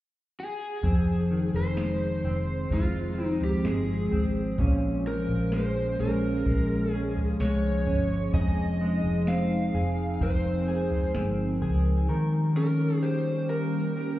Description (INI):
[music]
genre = dream pop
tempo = 64 BPM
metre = 4/4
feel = straight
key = F minor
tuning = A4 = 440 Hz
[part]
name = overdriven slide guitar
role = melody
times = 0.4-14.2 s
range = F4 to F5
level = -33 LUFS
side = equal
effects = ping-pong delay
[part]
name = warbly tape-like pad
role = sustained chords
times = 1.6-14.2 s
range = Eb3 to Bb4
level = -31 LUFS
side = equal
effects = chorus, built-in reverb, phaser
[part]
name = clean electric guitar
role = arpeggios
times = 0.8-14.2 s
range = F2 to Bb4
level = -28 LUFS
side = equal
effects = lush chorus
[part]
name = vintage muted fingered electric bass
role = bass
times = 0.8-12.1 s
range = F1 to Db2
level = -29 LUFS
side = equal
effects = none
[part]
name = soft vintage rhythm box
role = drums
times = 0.8-11.8 s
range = kick drum, snare drum, toms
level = -29 LUFS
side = equal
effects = none
[sound]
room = moderate lush hall reverb, RT60 3.2 s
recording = heard muffled through a wall, club reverb, EQ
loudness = -24 LUFS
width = side -15 dB against mid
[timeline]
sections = 0.8-14.2 A section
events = none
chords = 0.0 N.C.; 0.8 Fm7; 4.6 Bbm7; 8.3 Fm7; 12.1 Eb7